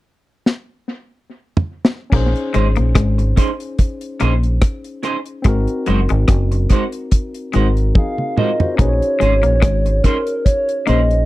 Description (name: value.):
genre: lovers rock reggae.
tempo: 72 BPM.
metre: 4/4.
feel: swing 55% on 16ths.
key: unclear.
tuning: A4 = 440 Hz.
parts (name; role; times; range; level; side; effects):
deep reggae drum kit; drums; 0.5-11.3 s; crash cymbal, hi-hat, kick drum, rim click, snare drum, toms; -14 LUFS; equal; none.
barky tine electric piano; accompaniment; 2.1-11.3 s; C4 to Db5; -25 LUFS; left 2 dB; overdrive.
twangy electric guitar; riff; 2.1-11.1 s; Gb3 to Bb3; -24 LUFS; left 9 dB; none.
deep dub fingered electric bass; bass; 2.1-11.3 s; Gb1 to Bb1; -16 LUFS; equal; none.
semi-hollow electric guitar; stabs; 2.5-11.0 s; Ab3 to C5; -21 LUFS; right 3 dB; wide subtle chorus.
hollow clarinet-like synth lead; melody; 8.0-11.3 s; Bb4 to F5; -19 LUFS; right 1 dB; chorus, tape echo.
room: little or no reverb.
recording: dry, close 1970s-style studio recording.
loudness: -14 LUFS.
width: side -17 dB against mid.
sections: 0.0-2.1 A section; 2.1-8.8 B section; 8.8-11.3 C section.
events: drum fill 0.5-2.1, 8.0-8.8.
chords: 0.0 N.C.; 2.1 Bbm11; 5.5 Ab7; 8.8 Bbm11.